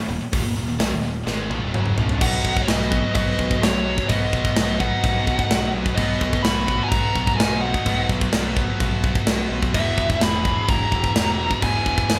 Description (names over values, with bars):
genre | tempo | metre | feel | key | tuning
heavy metal | 128 BPM | 4/4 | straight | unclear | A4 = 442 Hz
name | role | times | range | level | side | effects
heavy high-gain guitar | riff | 0.1-12.2 s | Eb2 to B3 | -32 LUFS | equal | distortion
scooped high-gain guitar | riff | 0.1-12.2 s | Eb2 to B3 | -31 LUFS | equal | distortion
growling picked electric bass | bass | 0.1-12.2 s | Eb1 to Cb2 | -30 LUFS | equal | overdrive
tight metal drum kit | drums | 0.3-12.2 s | crash cymbal, hi-hat, kick drum, snare drum, toms | -24 LUFS | equal | none
high-gain lead guitar | melody | 2.2-12.2 s | Db5 to B5 | -27 LUFS | equal | distortion
high-gain lead guitar | second line | 2.2-12.2 s | F#3 to G#4 | -33 LUFS | equal | distortion
room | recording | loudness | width
light reverb | band playing live in one room | -21 LUFS | mono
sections
0.0-2.2 A section; 2.2-12.2 B section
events
drum fill 1.3-2.2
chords
0.0 Ebm; 2.2 B; 9.7 E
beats
| 0.33 0.80 1.27 1.74 | 2.21 2.68 3.15 3.62 | 4.09 4.56 5.03 5.50 | 5.97 6.44 6.91 7.38 | 7.85 8.32 8.79 9.26 | 9.73 10.20 10.67 11.14 | 11.61 12.08